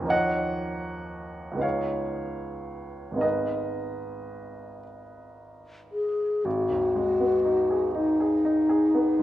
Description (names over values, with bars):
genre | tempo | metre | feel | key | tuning
classical, impressionist duo for alto flute and grand piano | 36-41 BPM (dotted quarters) | 6/8 | rubato | G# minor | A4 = 440 Hz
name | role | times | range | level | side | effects
clear baby grand piano | accompaniment | 0.0-9.2 s | G#1 to C#6 | -28 LUFS | right 2 dB | none
mellow hollow wooden-headed alto flute | melody | 5.9-9.2 s | D#4 to G#4 | -22 LUFS | left 2 dB | none
room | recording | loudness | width
wet recital hall reverb, RT60 1.5 s | worn, warbling old tape, cassette tape, warbly pitch drift | -23 LUFS | side -14 dB against mid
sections
0.0-6.5 A section; 6.5-9.2 B section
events
none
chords
0.1 D#m9; 1.6 C#9; 3.2 G#madd9; 6.5 G#m7